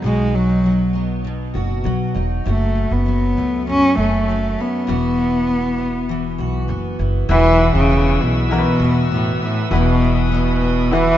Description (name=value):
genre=acoustic pop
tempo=99 BPM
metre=4/4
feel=straight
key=unclear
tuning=A4 = 439 Hz
part: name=warm cello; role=melody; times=0.0-11.2 s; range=A2 to C#4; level=-18 LUFS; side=equal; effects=ping-pong delay
part: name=picked steel-string acoustic guitar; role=accompaniment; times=0.0-11.2 s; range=F#2 to F#4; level=-24 LUFS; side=left 1 dB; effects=double-tracked left and right
part: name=upright bass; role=bass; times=0.0-11.2 s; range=E1 to C#2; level=-20 LUFS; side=equal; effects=none
part: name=bright upright piano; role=accompaniment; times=7.3-11.2 s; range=E4 to B4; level=-26 LUFS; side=left 4 dB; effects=none
part: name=bright tonewheel organ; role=sustained chords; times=7.3-11.2 s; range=B4 to E6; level=-27 LUFS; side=right 1 dB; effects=overdrive, slow rotary speaker
room=light reverb, studio reverb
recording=rough home demo mix, nothing above 7.6 kHz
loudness=-15 LUFS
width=side -12 dB against mid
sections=0.0-7.3 A section; 7.3-11.2 B section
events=none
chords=0.0 B; 2.5 F#m; 4.9 Esus2